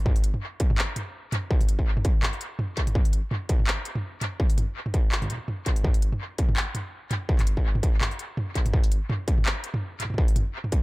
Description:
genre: drum and bass.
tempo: 166 BPM.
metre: 4/4.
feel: swing 56% on 16ths, half-time.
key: none.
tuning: none.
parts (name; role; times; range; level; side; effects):
electronic kick drum; drums; 0.1-10.8 s; none; -22 LUFS; equal; distortion.
industrial drum kit; drums; 0.1-10.8 s; handclaps, hi-hat, toms; -29 LUFS; equal; dub echo.
room: digital ambience.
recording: echo-heavy mix.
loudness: -23 LUFS.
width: side -21 dB against mid.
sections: 0.0-10.8 A section.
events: none.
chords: none.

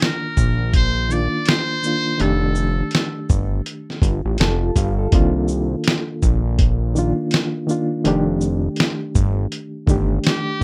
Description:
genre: lo-fi hip hop.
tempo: 82 BPM.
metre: 4/4.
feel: swing 60% on 16ths.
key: C dorian.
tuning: A4 = 438 Hz.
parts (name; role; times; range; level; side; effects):
trumpet with metal mute; melody; 0.0-3.3, 10.3-10.6 s; G4 to D5; -27 LUFS; equal; low-pass filter.
bright reed electric piano; accompaniment; 0.0-10.6 s; D3 to A5; -26 LUFS; equal; fast tremolo, cassette tape, low-pass filter.
dusty soul sampler-style drum kit; drums; 0.0-10.6 s; hi-hat, kick drum, shaker, snare drum; -21 LUFS; equal; none.
fat analog bass; bass; 0.4-10.6 s; F1 to C2; -22 LUFS; equal; none.
room: little or no reverb.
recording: rough home demo mix.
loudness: -19 LUFS.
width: mono.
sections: 0.0-10.6 A section.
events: reed electric piano fill 4.0-5.1.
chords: 0.0 Cm11; 2.2 F13; 5.1 Cm11; 8.1 F13.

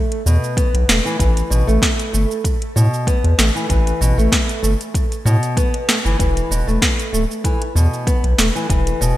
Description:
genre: organic downtempo.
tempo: 96 BPM.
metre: 4/4.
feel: swing 54% on 16ths.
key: unclear.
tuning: A4 = 440 Hz.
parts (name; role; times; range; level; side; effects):
afro-pop drum kit; drums; 0.1-9.2 s; hi-hat, shaker, snare drum; -20 LUFS; equal; studio reverb, gated reverb.
nylon-string guitar; arpeggios; 0.3-9.2 s; B2 to B3; -21 LUFS; equal; digital delay, shimmer reverb.
round analog bass; bass; 0.3-9.1 s; D1 to A2; -16 LUFS; equal; none.
electronic kick drum; drums; 0.6-8.8 s; none; -19 LUFS; equal; studio reverb.
room: light reverb.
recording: bright 1980s-style digital production.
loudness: -15 LUFS.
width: side -15 dB against mid.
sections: 0.0-9.2 A section.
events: none.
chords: 0.0 E5; 1.2 A5; 6.2 E5.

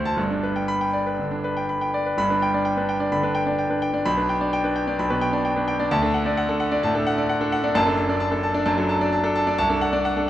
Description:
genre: classical, virtuoso piano study.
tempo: 129 BPM.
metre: 4/4.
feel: rubato.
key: G major.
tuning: A4 = 440 Hz.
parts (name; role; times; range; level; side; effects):
clear concert grand piano; solo; 0.0-10.3 s; F#1 to B5; -20 LUFS; equal; none.
room: moderate concert hall reverb, RT60 1.8 s.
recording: none.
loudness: -20 LUFS.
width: side -12 dB against mid.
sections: 0.0-2.2 A section; 2.2-10.3 B section.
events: none.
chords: 0.2 G; 4.1 G/B; 5.9 D; 7.8 D/F#; 9.6 D7/C.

